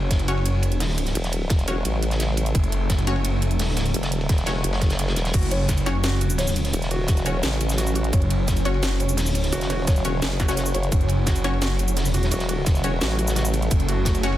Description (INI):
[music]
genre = dark technical drum and bass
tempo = 172 BPM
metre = 4/4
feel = straight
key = F# minor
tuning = A4 = 438 Hz
[part]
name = swarming drone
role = sustained chords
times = 0.0-14.4 s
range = C#3 to C#4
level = -28 LUFS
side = equal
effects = built-in reverb, sidechain pumping
[part]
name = orchestra-hit-like synth stab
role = stabs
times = 0.0-14.3 s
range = C#4 to C#5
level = -31 LUFS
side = left 2 dB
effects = built-in reverb, dub echo
[part]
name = wide detuned saw bass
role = bass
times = 0.0-14.4 s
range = F#1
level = -23 LUFS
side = equal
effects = chorus, overdrive, sidechain pumping
[part]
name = crunchy breakbeat drum kit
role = drums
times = 0.1-14.4 s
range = hi-hat, ride cymbal, snare drum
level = -32 LUFS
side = equal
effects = high-pass filter on cymbals, studio reverb, high-pass filter on hats, high-pass filter on snare, high-pass filter on room
[part]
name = drum and bass drum kit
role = drums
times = 0.1-14.3 s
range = crash cymbal, hi-hat, shaker, snare drum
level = -29 LUFS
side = right 1 dB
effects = overdrive, studio reverb
[part]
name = electronic kick drum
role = drums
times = 0.1-14.1 s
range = none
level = -21 LUFS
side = equal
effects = studio reverb
[part]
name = formant-sweep wobble bass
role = bass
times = 1.2-13.7 s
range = E1 to A1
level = -24 LUFS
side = equal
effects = chorus, tube saturation
[part]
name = felt-muted upright piano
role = arpeggios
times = 5.3-14.3 s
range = F#4 to C#5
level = -32 LUFS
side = equal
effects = sidechain pumping, dub echo
[sound]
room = light reverb, studio reverb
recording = dense, heavily limited modern master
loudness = -20 LUFS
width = side -13 dB against mid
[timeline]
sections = 0.0-14.4 A section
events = kick drops out 5.0-5.3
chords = 0.0 F#5